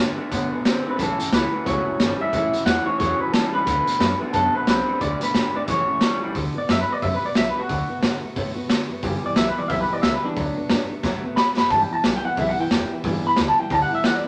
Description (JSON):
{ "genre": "rockabilly", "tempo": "179 BPM", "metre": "4/4", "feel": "swing 61% on 8ths", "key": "D major", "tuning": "A4 = 440 Hz", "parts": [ { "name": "picked steel-string acoustic guitar", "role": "accompaniment", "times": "0.0-14.3 s", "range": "G2 to G4", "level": "-32 LUFS", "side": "equal", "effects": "none" }, { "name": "electric guitar through a small old amp", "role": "riff", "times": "0.0-6.3 s", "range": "A2 to C4", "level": "-30 LUFS", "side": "equal", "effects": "none" }, { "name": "upright bass", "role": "bass", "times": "0.0-14.3 s", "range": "E1 to A2", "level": "-33 LUFS", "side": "equal", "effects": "none" }, { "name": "raw garage drum kit", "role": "drums", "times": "0.3-14.1 s", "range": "hi-hat, kick drum, snare drum", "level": "-26 LUFS", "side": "equal", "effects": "none" }, { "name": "electric guitar through a small old amp", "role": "melody", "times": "0.9-14.3 s", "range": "D4 to B5", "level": "-25 LUFS", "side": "equal", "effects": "none" } ], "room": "moderate studio reverb, RT60 0.7 s", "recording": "none", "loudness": "-22 LUFS", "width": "mono", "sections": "0.0-6.4 A section; 6.4-14.3 B section", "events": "clean electric guitar solo 6.4-14.3; drum fill 11.0-11.7", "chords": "0.0 D6; 1.0 A6; 3.7 D6; 5.7 A6; 6.4 D6; 9.0 G6; 10.4 D6; 11.7 G6" }